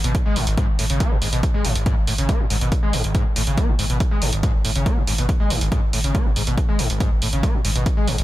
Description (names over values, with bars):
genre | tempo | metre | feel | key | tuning
driving peak-time techno | 140 BPM | 4/4 | straight | G# phrygian | A4 = 441 Hz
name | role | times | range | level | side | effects
screaming distorted acid line | riff | 0.0-8.2 s | G#1 to B3 | -24 LUFS | left 1 dB | distortion, lush chorus, vintage 12-bit sampler grit, sidechain pumping, ping-pong delay
saturated sub bass | bass | 0.0-8.2 s | G#1 | -24 LUFS | equal | overdrive, sidechain pumping, low-pass filter
electronic hi-hat | drums | 0.0-8.2 s | none | -26 LUFS | right 2 dB | none
electronic kick drum | drums | 0.1-7.9 s | none | -20 LUFS | equal | none
room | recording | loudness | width
light reverb | bright 1980s-style digital production | -18 LUFS | side -15 dB against mid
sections
0.0-8.2 A section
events
none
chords
0.0 G#m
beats
0.15 0.58 | 1.00 1.43 1.86 2.29 | 2.72 3.15 3.58 4.00 | 4.43 4.86 5.29 5.72 | 6.15 6.58 7.00 7.43 | 7.86